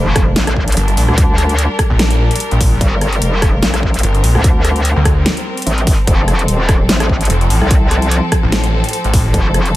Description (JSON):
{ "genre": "heavy wobble dubstep", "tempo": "147 BPM", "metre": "4/4", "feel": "swing 55% on 16ths, half-time", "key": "G minor", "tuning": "A4 = 436 Hz", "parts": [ { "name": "rich symphonic string section", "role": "sustained chords", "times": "0.0-9.8 s", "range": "F3 to Bb4", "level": "-21 LUFS", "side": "left 1 dB", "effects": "sidechain pumping" }, { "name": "metallic wobble bass", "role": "bass", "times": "0.0-9.7 s", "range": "Eb1 to D2", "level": "-15 LUFS", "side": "equal", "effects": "chorus, overdrive" }, { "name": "impact", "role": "sound effects", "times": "0.0-1.2 s", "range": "none", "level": "-25 LUFS", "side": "equal", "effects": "none" }, { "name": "big-room dance drum kit", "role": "drums", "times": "0.2-9.7 s", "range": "hi-hat, rim click, snare drum", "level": "-19 LUFS", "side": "equal", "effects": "none" }, { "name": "electronic kick drum", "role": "drums", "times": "0.2-9.4 s", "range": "none", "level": "-14 LUFS", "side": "equal", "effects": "none" }, { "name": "snarling distorted saw bass", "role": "bass", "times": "0.8-9.3 s", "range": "F1 to D2", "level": "-14 LUFS", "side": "equal", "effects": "distortion, overdrive" } ], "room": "little or no reverb", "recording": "none", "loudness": "-11 LUFS", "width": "side -16 dB against mid", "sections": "0.0-9.8 A section", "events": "impact 0.0-1.2", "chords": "0.0 Gm; 6.1 F", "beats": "0.36 0.77 | 1.18 1.58 1.99 2.40 | 2.81 3.22 3.62 4.03 | 4.44 4.85 5.26 5.67 | 6.07 6.48 6.89 7.30 | 7.71 8.12 8.52 8.93 | 9.34 9.75" }